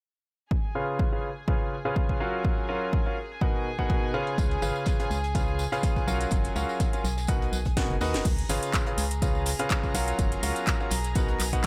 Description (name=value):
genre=piano house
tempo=124 BPM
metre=4/4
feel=swing 55% on 16ths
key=Db mixolydian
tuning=A4 = 440 Hz
part: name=rich chamber violin section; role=sustained chords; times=0.5-11.7 s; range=Ab4 to Bb5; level=-40 LUFS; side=equal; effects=sidechain pumping
part: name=electronic kick drum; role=drums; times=0.5-11.7 s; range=none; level=-30 LUFS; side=equal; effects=none
part: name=house drum kit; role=drums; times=0.5-11.7 s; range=crash cymbal, handclaps, hi-hat, snare drum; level=-35 LUFS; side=equal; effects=low-pass filter on hats, low-pass filter on snare, low-pass filter on cymbals, low-pass filter on room
part: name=clear concert grand piano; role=riff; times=0.8-11.7 s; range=Cb3 to Gb5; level=-32 LUFS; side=equal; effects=sidechain pumping, low-pass filter, digital delay
part: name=organ-like FM bass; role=bass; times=4.4-11.7 s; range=Gb1 to Eb2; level=-33 LUFS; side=equal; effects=sidechain pumping
part: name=cloth-damped thuddy drum kit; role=drums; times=4.4-11.7 s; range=hi-hat, snare drum, tambourine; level=-46 LUFS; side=equal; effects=high-pass filter on hats, high-pass filter on snare, high-pass filter on perc, high-pass filter on room
part: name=tambourine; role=percussion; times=4.4-11.7 s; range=none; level=-46 LUFS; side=equal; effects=none
part: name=granular cloud pad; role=texture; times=10.4-11.7 s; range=none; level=barely audible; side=none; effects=none
room=small room ambience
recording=none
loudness=-27 LUFS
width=mono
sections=0.5-8.3 A section; 8.3-11.7 B section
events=drum fill 7.8-8.3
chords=0.5 Db7; 2.4 Gbmaj7; 3.2 Cbmaj7; 4.4 Db7; 6.3 Gbmaj7; 7.0 Cbmaj7; 8.3 Db7; 10.2 Gbmaj7; 10.9 Cbmaj7